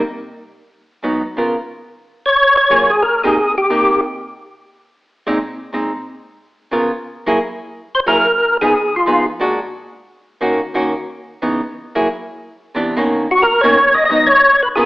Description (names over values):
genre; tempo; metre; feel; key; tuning
jazz; 179 BPM; 4/4; swing 62% on 8ths; unclear; A4 = 440 Hz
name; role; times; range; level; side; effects
archtop guitar, miked and amplified; accompaniment; 1.0-14.9 s; Ab2 to Bb4; -18 LUFS; equal; none
percussive tonewheel organ; melody; 2.3-4.0, 7.9-9.3, 13.3-14.9 s; F4 to D#5; -11 LUFS; equal; slow rotary speaker, overdrive, chorus vibrato
room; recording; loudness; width
wet large studio reverb, RT60 1.4 s; AM radio sound; -13 LUFS; side -20 dB against mid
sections
0.0-7.4 A section; 7.4-14.9 B section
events
none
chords
0.0 N.C.; 0.7 Abm7; 1.4 Db6; 2.0 Gbmaj9; 3.4 Cm7; 4.0 N.C.; 4.7 Bb9sus4; 6.0 Db6; 7.4 F#9; 8.7 Fm7b5; 9.4 A#7b13; 10.1 D#m7; 11.4 C#m9; 12.1 N.C.; 12.8 Bmaj9; 14.1 G#m7